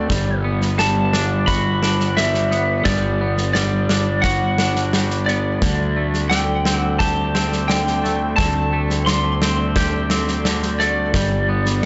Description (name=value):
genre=post-rock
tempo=87 BPM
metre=4/4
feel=straight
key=unclear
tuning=A4 = 440 Hz
part: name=lightly driven lead guitar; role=melody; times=0.0-11.9 s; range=D5 to C6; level=-25 LUFS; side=equal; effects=digital delay
part: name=sweeping resonant pad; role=sustained chords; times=0.0-11.9 s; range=B3 to G5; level=-33 LUFS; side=equal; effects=none
part: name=twangy electric guitar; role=arpeggios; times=0.0-11.9 s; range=D3 to G4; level=-27 LUFS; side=equal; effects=subtle chorus, digital delay
part: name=fuzz fingered electric bass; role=bass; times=0.0-11.9 s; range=G1 to D2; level=-24 LUFS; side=equal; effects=overdrive
part: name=huge arena drum kit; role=drums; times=0.1-11.9 s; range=kick drum, snare drum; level=-24 LUFS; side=equal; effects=none
room=moderate large studio reverb, RT60 0.9 s, small room ambience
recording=nothing above 7.8 kHz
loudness=-19 LUFS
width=mono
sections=0.0-11.9 A section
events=none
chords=0.1 Gmaj7; 5.6 D7sus4; 11.1 G